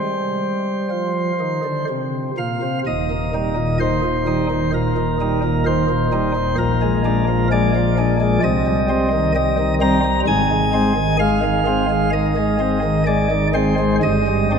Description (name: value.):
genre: classical, chorale-style piece for pipe organ.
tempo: 65 BPM.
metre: 4/4.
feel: uneven beats, rubato.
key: Eb major.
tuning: A4 = 441 Hz.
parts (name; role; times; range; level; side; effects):
chamber organ, sparkling flutes; solo; 0.0-14.6 s; Eb1 to Bb5; -16 LUFS; equal; none.
room: wet church reverb, RT60 3.5 s.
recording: none.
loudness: -16 LUFS.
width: side -6 dB against mid.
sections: 0.0-2.9 A section; 2.9-14.6 B section.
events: none.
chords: 0.0 Cm; 2.9 Eb; 6.6 Bb7; 8.4 Cm; 10.3 Ab; 14.0 Gsus4.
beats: 0.91 1.89 | 2.86 3.81 4.74 5.66 | 6.58 7.50 8.42 9.34 | 10.26 11.19 12.12 13.06 | 14.03.